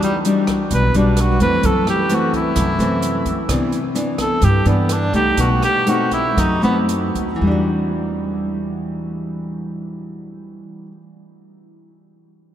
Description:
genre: bossa nova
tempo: 110-130 BPM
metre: 4/4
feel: straight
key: E minor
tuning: A4 = 440 Hz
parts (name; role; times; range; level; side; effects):
- warm cor anglais; melody; 0.0-6.8 s; G3 to B4; -21 LUFS; right 1 dB; none
- nylon-string guitar; accompaniment; 0.0-11.0 s; F#2 to F#4; -19 LUFS; left 1 dB; none
- open jazz drum kit; drums; 0.0-7.3 s; hi-hat, kick drum, rim click; -26 LUFS; right 1 dB; none
- upright bass; bass; 0.7-10.6 s; B1 to C3; -22 LUFS; equal; none
room: wet cathedral reverb, RT60 6.3 s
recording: in a vast, echoing space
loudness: -15 LUFS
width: side -10 dB against mid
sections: 0.0-7.4 A section; 7.4-11.8 B section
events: cor anglais solo 0.0-7.4; slowing down 3.5-7.4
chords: 0.0 Em9; 1.6 F#m7b5; 3.5 Cmaj9; 5.4 B7b9; 7.4 Em9

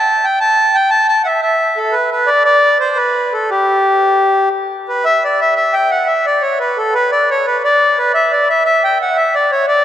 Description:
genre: celtic folk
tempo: 117 BPM (dotted quarters)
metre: 9/8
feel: straight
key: G major, E dorian from 5.0 s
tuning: A4 = 438 Hz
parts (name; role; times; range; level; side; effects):
- accordion; solo; 0.0-9.8 s; G4 to A5; -11 LUFS; equal; none
room: wet cathedral reverb, RT60 4.6 s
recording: recorded in a church or concert hall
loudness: -11 LUFS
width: side -11 dB against mid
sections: 0.0-5.0 A section; 5.0-9.8 B section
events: none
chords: none

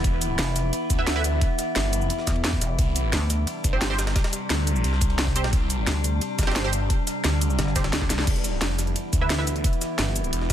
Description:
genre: dark technical drum and bass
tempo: 175 BPM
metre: 4/4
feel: straight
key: E phrygian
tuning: A4 = 440 Hz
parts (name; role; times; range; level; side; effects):
- metallic inharmonic drone; sustained chords; 0.0-10.5 s; C3 to E4; -29 LUFS; left 1 dB; chorus, built-in reverb, sidechain pumping
- phased detuned saw bass; bass; 0.0-10.5 s; E1 to D2; -26 LUFS; equal; phaser, overdrive, sidechain pumping
- drum and bass drum kit; drums; 0.0-10.5 s; crash cymbal, hi-hat, shaker, snare drum; -27 LUFS; equal; overdrive
- electronic kick drum; drums; 0.0-10.5 s; none; -24 LUFS; equal; overdrive
- jungle sampler-style drum kit; drums; 0.0-10.5 s; ride cymbal, snare drum; -35 LUFS; right 1 dB; high-pass filter on cymbals, high-pass filter on snare, high-pass filter on room
- pulsing pluck wobble bass; bass; 0.4-3.5, 5.9-8.3 s; E1 to E2; -25 LUFS; equal; chorus
- filtered dub chord stab; stabs; 1.0-1.2, 3.7-9.4 s; C4 to E5; -31 LUFS; right 4 dB; analog chorus, digital delay
room: digital ambience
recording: none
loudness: -21 LUFS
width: side -10 dB against mid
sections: 0.0-8.3 A section; 8.3-10.5 A section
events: drop 0.0-8.3, 8.3-10.5; drum fill 8.0; band accent 8.2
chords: 0.0 Em; 2.8 Csus2; 8.3 Em

